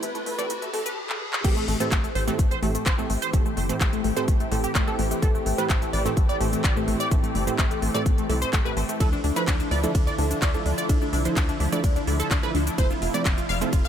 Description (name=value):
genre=progressive house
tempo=127 BPM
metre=4/4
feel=straight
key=A minor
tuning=A4 = 435 Hz
part: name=wide unison lead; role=melody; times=0.0-1.0 s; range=A4 to B4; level=-34 LUFS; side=equal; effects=ensemble chorus, sidechain pumping, tape echo
part: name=lush unison pad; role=sustained chords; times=0.2-13.9 s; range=C3 to G4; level=-31 LUFS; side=equal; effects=chorus, phaser, sidechain pumping
part: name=tight sequenced synth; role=arpeggios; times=0.0-13.9 s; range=A3 to F5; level=-29 LUFS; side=left 2 dB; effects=chorus, phaser, sidechain pumping, tape echo
part: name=tight sequencer bass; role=bass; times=0.0-13.9 s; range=F1 to D2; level=-28 LUFS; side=equal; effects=sidechain pumping, high-pass filter
part: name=house drum kit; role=drums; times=0.0-13.9 s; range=crash cymbal, handclaps, hi-hat, ride cymbal, shaker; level=-31 LUFS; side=equal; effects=studio reverb
part: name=riser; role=sound effects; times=0.0-1.4 s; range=none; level=-35 LUFS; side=equal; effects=none
part: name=wide unison pluck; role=stabs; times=0.4-13.7 s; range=A2 to D5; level=-30 LUFS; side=right 4 dB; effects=cassette tape, sidechain pumping, tape echo
part: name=electronic kick drum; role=drums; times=1.4-13.8 s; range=none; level=-23 LUFS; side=equal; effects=studio reverb
room=digital ambience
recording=high-pass filter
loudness=-21 LUFS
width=side -9 dB against mid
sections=0.0-1.4 A section; 1.4-13.9 B section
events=build-up 0.0-1.4; riser 0.0-1.4; filter sweep on synth arpeggio sound 0.0-1.4; filter sweep on synth pluck 0.0-1.4; filter sweep on analog synth lead 0.0-1.4; drum fill 1.1-1.4; drop 1.4-13.9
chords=0.0 Am7; 9.0 Dmadd9; 12.8 Fmaj7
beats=0.03 0.50 0.97 | 1.44 1.92 2.39 2.86 | 3.33 3.81 4.28 4.75 | 5.22 5.70 6.17 6.64 | 7.11 7.59 8.06 8.53 | 9.00 9.48 9.95 10.42 | 10.89 11.37 11.84 12.31 | 12.78 13.26 13.73